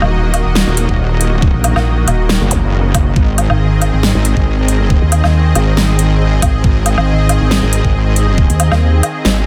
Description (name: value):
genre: heavy wobble dubstep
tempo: 138 BPM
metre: 4/4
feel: swing 54% on 16ths, half-time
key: unclear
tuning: A4 = 439 Hz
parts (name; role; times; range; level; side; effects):
- supersaw pad; sustained chords; 0.0-9.5 s; Eb3 to Eb5; -21 LUFS; equal; analog chorus, sidechain pumping
- pulsing pluck wobble bass; bass; 0.0-9.0 s; Eb1 to Eb2; -15 LUFS; equal; chorus, overdrive
- dubstep drum kit; drums; 0.0-9.3 s; hi-hat, snare drum, woodblock; -20 LUFS; equal; none
- wobble bass; bass; 0.7-9.5 s; Eb1 to Ab1; -16 LUFS; equal; chorus, overdrive
- electronic kick drum; drums; 0.9-8.5 s; none; -16 LUFS; equal; none
- zap; sound effects; 2.5-2.6 s; none; -28 LUFS; equal; none
room: light reverb, digital ambience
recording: none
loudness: -13 LUFS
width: mono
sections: 0.0-9.5 A section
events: kick drops out 9.2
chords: 0.0 Ebm; 3.2 Ab